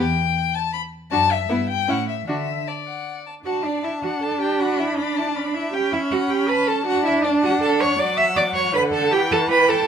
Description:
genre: quick classical-period movement for string quartet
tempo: 158 BPM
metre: 3/4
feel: straight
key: D major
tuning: A4 = 442 Hz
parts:
  - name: rich violin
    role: melody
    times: 0.0-9.9 s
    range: D5 to B5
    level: -26 LUFS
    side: left 9 dB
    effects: none
  - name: rich violin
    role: second line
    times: 0.0-9.9 s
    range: E4 to E6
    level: -27 LUFS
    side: left 4 dB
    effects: none
  - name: rich viola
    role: accompaniment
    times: 0.0-9.9 s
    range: D3 to D4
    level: -24 LUFS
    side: right 1 dB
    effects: none
  - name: rich cello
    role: bass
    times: 0.0-9.9 s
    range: E2 to E5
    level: -22 LUFS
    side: right 4 dB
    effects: none
room: light reverb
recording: minimal, uncompressed stereo recording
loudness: -18 LUFS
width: side -8 dB against mid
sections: 0.0-3.5 A section; 3.5-9.9 B section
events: none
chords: 0.0 Em; 1.1 D/F#; 1.5 Em/G; 1.9 A; 2.3 D; 4.6 E5/D; 5.7 A7/C#; 6.9 D; 8.0 D/F#; 9.1 Em

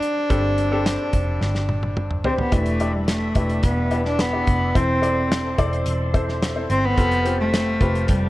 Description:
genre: piano-driven pop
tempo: 108 BPM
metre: 4/4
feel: straight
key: unclear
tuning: A4 = 440 Hz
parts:
  - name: warm cello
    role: melody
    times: 0.0-8.3 s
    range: G3 to D4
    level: -23 LUFS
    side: equal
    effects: none
  - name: clear baby grand piano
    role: accompaniment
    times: 0.0-8.3 s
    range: G2 to D5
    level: -26 LUFS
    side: left 2 dB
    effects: none
  - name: damped 70s drum kit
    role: drums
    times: 0.0-8.2 s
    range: hi-hat, kick drum, snare drum, toms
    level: -23 LUFS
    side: equal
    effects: none
  - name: vintage muted picked electric bass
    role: bass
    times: 0.3-8.3 s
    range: E1 to G1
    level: -24 LUFS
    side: equal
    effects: none
  - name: tonewheel organ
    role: sustained chords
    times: 2.5-8.3 s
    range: G4 to C6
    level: -35 LUFS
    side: equal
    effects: chorus vibrato, slow rotary speaker
room: light reverb, small room ambience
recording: worn, warbling old tape, cassette tape, warbly pitch drift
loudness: -18 LUFS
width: side -17 dB against mid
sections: 0.0-2.5 A section; 2.5-8.3 B section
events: drum fill 1.4-2.5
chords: 0.0 Gsus4; 2.5 Em7; 4.8 Am/E; 7.0 Fadd9

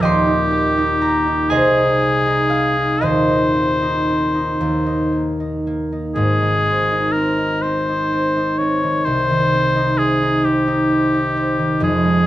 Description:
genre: classical, romantic duo for oboe and harp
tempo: 38-44 BPM (dotted quarters)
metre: 6/8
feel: rubato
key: Ab major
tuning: A4 = 440 Hz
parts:
  - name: warm oboe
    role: melody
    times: 0.0-12.3 s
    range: G4 to Db5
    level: -19 LUFS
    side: left 1 dB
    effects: none
  - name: concert harp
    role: accompaniment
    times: 0.0-12.3 s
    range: Eb1 to C6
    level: -17 LUFS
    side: right 1 dB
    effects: none
room: light reverb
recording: close, detailed microphones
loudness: -15 LUFS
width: side -14 dB against mid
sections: 0.0-6.2 A section; 6.2-12.3 B section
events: none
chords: 0.0 Eb; 1.5 Ab/C; 3.0 Ab/Eb; 4.6 Eb5; 6.2 Ab; 9.0 Cm

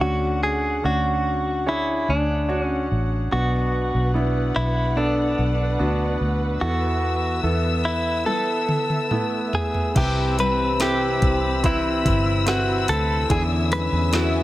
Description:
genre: pop ballad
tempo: 72 BPM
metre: 4/4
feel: straight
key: unclear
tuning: A4 = 440 Hz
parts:
  - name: direct-recorded clean electric guitar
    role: melody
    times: 0.0-14.4 s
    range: D4 to B4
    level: -24 LUFS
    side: equal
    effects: harmonic tremolo
  - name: clear concert grand piano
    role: accompaniment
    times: 0.0-14.4 s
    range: B2 to C#5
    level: -26 LUFS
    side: right 1 dB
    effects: none
  - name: dark studio string section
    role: sustained chords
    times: 0.0-14.4 s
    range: C4 to E6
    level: -31 LUFS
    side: left 3 dB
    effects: none
  - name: vintage muted fingered electric bass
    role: bass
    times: 0.0-14.4 s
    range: G1 to E2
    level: -24 LUFS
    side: equal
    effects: none
  - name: smooth R&B drum kit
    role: drums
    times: 8.3-14.3 s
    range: crash cymbal, hi-hat, kick drum, snare drum, toms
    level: -25 LUFS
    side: equal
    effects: none
  - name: dark French horn section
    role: second line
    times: 10.0-14.4 s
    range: G2 to C#4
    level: -31 LUFS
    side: left 4 dB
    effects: none
  - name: fingerpicked steel-string acoustic guitar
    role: arpeggios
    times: 10.0-14.4 s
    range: E2 to E4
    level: -31 LUFS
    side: left 3 dB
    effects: none
room: light reverb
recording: none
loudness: -19 LUFS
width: side -15 dB against mid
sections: 0.0-10.0 A section; 10.0-14.4 B section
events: drum fill 8.3-10.0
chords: 0.0 Dmaj7; 3.3 Bm; 6.6 Esus4; 10.0 Cmaj7; 13.3 E7

